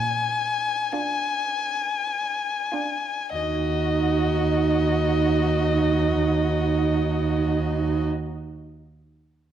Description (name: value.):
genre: classical, slow romantic movement for string quartet.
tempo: 30-38 BPM (dotted quarters).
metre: 12/8.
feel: rubato.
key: Eb minor.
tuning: A4 = 441 Hz.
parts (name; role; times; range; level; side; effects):
rich violin; melody; 0.0-8.1 s; Eb5 to Ab5; -26 LUFS; left 5 dB; none.
rich cello; bass; 0.0-8.1 s; Eb2 to Bb2; -25 LUFS; right 3 dB; none.
dark violin; second line; 0.9-8.1 s; F4 to Gb4; -29 LUFS; equal; none.
warm viola; accompaniment; 0.9-8.1 s; D4 to Eb4; -26 LUFS; right 6 dB; none.
room: wet recital hall reverb, RT60 1.4 s.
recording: dark, warm production.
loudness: -21 LUFS.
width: side -10 dB against mid.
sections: 0.0-3.4 A section; 3.4-9.5 B section.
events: slowing down 0.0-3.4.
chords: 0.0 Bb7; 3.4 Ebm.